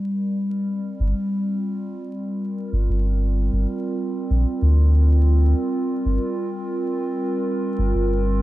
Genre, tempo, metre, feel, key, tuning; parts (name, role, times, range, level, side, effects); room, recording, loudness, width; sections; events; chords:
ambient dub; 95 BPM; 4/4; swing 53% on 16ths; G minor; A4 = 442 Hz
warbly tape-like pad; sustained chords; 0.0-8.4 s; G3 to Bb4; -24 LUFS; right 1 dB; chorus, built-in reverb
soft dub sub bass; bass; 1.0-8.4 s; G1 to D2; -17 LUFS; equal
light reverb; vinyl crackle; -20 LUFS; side -16 dB against mid
0.5-8.4 A section
0.0 C5/G; 0.5 Gm7